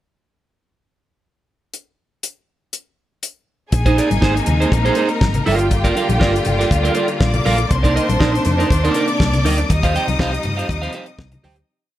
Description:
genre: disco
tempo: 120 BPM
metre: 4/4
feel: straight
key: unclear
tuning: A4 = 439 Hz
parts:
  - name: damped 70s drum kit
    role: drums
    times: 1.7-11.7 s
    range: hi-hat, kick drum, snare drum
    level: -20 LUFS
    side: equal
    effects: none
  - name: clear studio string section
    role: second line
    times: 3.7-11.6 s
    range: G4 to Eb6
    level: -24 LUFS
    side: left 1 dB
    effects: tape echo
  - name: electric guitar at the edge of break-up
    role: accompaniment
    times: 3.7-11.6 s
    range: Eb4 to G5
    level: -20 LUFS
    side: right 4 dB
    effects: lush chorus
  - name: clear studio string section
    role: sustained chords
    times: 3.7-11.7 s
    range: C3 to F4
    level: -23 LUFS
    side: left 2 dB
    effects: none
  - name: hollow-body short-scale fingered electric bass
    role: bass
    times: 3.7-11.6 s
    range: G1 to G2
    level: -20 LUFS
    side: equal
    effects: none
  - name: congas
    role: percussion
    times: 4.1-11.6 s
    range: none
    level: -26 LUFS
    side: left 3 dB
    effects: none
room: light reverb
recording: none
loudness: -14 LUFS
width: side -13 dB against mid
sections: 1.7-3.7 pickup bar; 3.7-11.7 pre-chorus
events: fade-out 9.7-11.7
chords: 1.7 N.C.; 3.7 Bb9sus4; 5.5 Gm7; 7.7 Cm9; 9.7 Eb69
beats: | 1.74 2.23 2.73 3.23 | 3.73 4.22 4.72 5.22 | 5.72 6.21 6.71 7.21 | 7.71 8.21 8.71 9.20 | 9.70 10.20 10.70 11.19

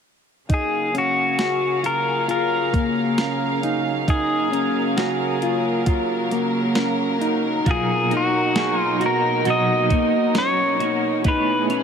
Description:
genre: dream pop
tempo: 67 BPM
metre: 4/4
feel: straight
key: F# major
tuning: A4 = 440 Hz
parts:
  - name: pedal steel guitar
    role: melody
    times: 0.5-11.8 s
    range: F#4 to D#5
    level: -23 LUFS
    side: left 1 dB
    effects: digital delay
  - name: warm studio string section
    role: sustained chords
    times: 0.5-11.8 s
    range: B2 to E#5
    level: -25 LUFS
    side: right 2 dB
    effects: none
  - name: mellow electric guitar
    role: arpeggios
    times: 0.5-11.8 s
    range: A#3 to G#4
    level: -24 LUFS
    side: left 2 dB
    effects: lush chorus, digital delay
  - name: clean 12-bit digital drum machine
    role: drums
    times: 0.5-11.8 s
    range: hi-hat, kick drum, snare drum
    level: -23 LUFS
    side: right 1 dB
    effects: none
  - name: clean electric guitar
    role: accompaniment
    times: 7.7-11.8 s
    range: B2 to C#5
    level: -25 LUFS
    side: right 2 dB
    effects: tremolo, analog chorus
  - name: drifting glass-harmonics texture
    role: texture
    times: 8.8-10.5 s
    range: D#5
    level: -31 LUFS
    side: right 9 dB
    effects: chorus, built-in reverb, digital delay
room: moderate huge ambient reverb, RT60 7.3 s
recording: none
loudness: -18 LUFS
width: side -7 dB against mid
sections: 0.5-11.8 A section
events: none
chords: 0.5 F#maj9; 7.7 Bmaj7; 11.2 Amaj9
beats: | 0.50 1.39 2.29 3.18 | 4.08 4.97 5.87 6.77 | 7.66 8.56 9.45 10.35 | 11.24

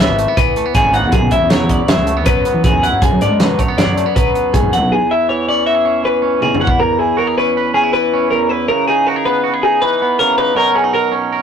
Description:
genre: math rock and midwest emo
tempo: 159 BPM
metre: 5/4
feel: straight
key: E mixolydian, E lydian from 6.8 s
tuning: A4 = 440 Hz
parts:
  - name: twangy electric guitar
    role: accompaniment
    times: 0.0-11.4 s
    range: E2 to B4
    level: -19 LUFS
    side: right 5 dB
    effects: none
  - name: twelve-string electric guitar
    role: arpeggios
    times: 0.0-11.1 s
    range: G#4 to F#5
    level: -14 LUFS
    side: left 2 dB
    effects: none
  - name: fuzz fingered electric bass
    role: bass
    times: 0.0-4.9 s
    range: G#1 to G#3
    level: -18 LUFS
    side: right 1 dB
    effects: overdrive
  - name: modern studio drum kit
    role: drums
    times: 0.0-6.8 s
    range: hi-hat, kick drum, snare drum, toms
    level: -16 LUFS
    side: equal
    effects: none
room: light reverb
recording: rough rehearsal-room recording, warm saturation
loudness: -12 LUFS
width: side -7 dB against mid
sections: 0.0-6.8 A section; 6.8-11.4 B section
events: drum fill 6.4-6.8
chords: 0.0 C#m9; 1.1 F#9sus4; 3.0 Bm6/F#; 4.9 E6; 8.7 C#m9; 10.6 Bmaj9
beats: 0.00 0.37 0.75 | 1.13 1.51 1.89 2.27 2.64 | 3.02 3.40 3.78 4.16 4.53 | 4.91 5.29 5.67 6.05 6.42 | 6.80 7.18 7.55 7.93 8.30 | 8.68 9.06 9.43 9.81 10.19 | 10.56 10.94 11.31

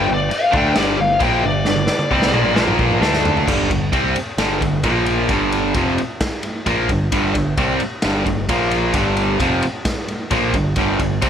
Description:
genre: hard rock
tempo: 132 BPM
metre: 4/4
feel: straight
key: unclear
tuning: A4 = 441 Hz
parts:
  - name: bluesy overdriven lead guitar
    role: melody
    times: 0.0-2.5 s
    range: D5 to G5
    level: -20 LUFS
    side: left 3 dB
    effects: distortion
  - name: cranked stack guitar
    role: riff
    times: 0.0-11.3 s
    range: F2 to D4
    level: -18 LUFS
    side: equal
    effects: overdrive
  - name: growling picked electric bass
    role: bass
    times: 0.0-11.3 s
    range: F1 to D2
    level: -24 LUFS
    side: equal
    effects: overdrive
  - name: raw garage drum kit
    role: drums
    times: 0.3-11.3 s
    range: crash cymbal, kick drum, ride cymbal, snare drum, toms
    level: -21 LUFS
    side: equal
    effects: none
room: light reverb, small room ambience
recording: none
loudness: -15 LUFS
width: side -8 dB against mid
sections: 0.0-3.5 A section; 3.5-11.3 B section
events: lead electric guitar solo 0.0-3.5; drum fill 1.7-3.5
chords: 0.0 G5; 2.6 Bb5; 3.0 D5; 3.5 G5; 4.8 Bb5; 5.3 G5; 8.5 Bb5; 8.9 G5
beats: 0.32 0.77 1.22 | 1.67 2.12 2.58 3.03 | 3.48 3.94 4.39 4.84 | 5.30 5.75 6.21 6.67 | 7.12 7.58 8.04 8.49 | 8.95 9.41 9.86 10.32 | 10.78 11.24

